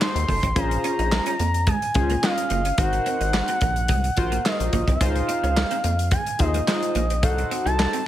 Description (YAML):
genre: early-eighties boogie funk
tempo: 108 BPM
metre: 4/4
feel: straight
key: Bb minor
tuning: A4 = 439 Hz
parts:
  - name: gliding portamento lead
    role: melody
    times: 0.0-8.1 s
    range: Eb5 to C6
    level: -26 LUFS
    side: right 1 dB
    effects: chorus, slapback echo
  - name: chorused polysynth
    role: accompaniment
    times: 0.0-8.0 s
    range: Db4 to Eb5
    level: -28 LUFS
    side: left 2 dB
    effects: none
  - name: clean electric guitar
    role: riff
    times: 0.0-8.0 s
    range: Ab3 to Eb4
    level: -33 LUFS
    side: right 6 dB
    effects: ensemble chorus
  - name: modern studio drum kit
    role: drums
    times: 0.0-8.1 s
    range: handclaps, hi-hat, kick drum, snare drum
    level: -25 LUFS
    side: equal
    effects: none
  - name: group handclap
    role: percussion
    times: 0.0-7.9 s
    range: none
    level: -36 LUFS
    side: right 6 dB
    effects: none
  - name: rubbery square bass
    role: bass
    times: 0.1-7.9 s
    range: Gb1 to F2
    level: -24 LUFS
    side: equal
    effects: none
room: light reverb, small room ambience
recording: none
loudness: -20 LUFS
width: side -12 dB against mid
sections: 0.0-8.1 A section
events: none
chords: 0.0 F7b9 (rootless); 0.6 Bbm7; 2.8 Ab13; 5.0 Dbmaj9; 7.2 Cdim7